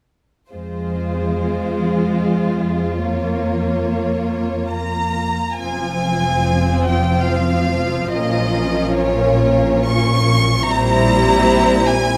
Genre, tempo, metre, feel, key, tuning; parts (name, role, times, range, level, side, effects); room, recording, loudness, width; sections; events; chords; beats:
classical, slow romantic movement for string orchestra; 71 BPM; 3/4; uneven beats, rubato; F minor; A4 = 436 Hz
warm studio violin section; melody; 0.5-12.2 s; C5 to Db6; -23 LUFS; equal
warm studio violin section; second line; 0.5-12.2 s; E4 to C5; -26 LUFS; equal
warm studio viola section; accompaniment; 0.5-12.2 s; F3 to Db4; -24 LUFS; equal
warm studio cello section; bass; 0.5-12.2 s; F2 to Bb2; -24 LUFS; equal
warm studio double bass section; bass; 5.6-12.2 s; F1 to Bb1; -24 LUFS; equal
moderate scoring stage reverb, RT60 2.2 s; close, detailed microphones; -18 LUFS; mono
0.5-5.6 A section; 5.6-12.2 B section
0.5 Fm; 3.1 Bbm/F; 5.6 Fm; 8.2 Bbm; 10.7 C7/Bb
| 0.53 1.40 2.24 | 3.07 3.88 4.72 | 5.61 6.46 7.31 | 8.15 9.00 9.90 | 10.71 11.51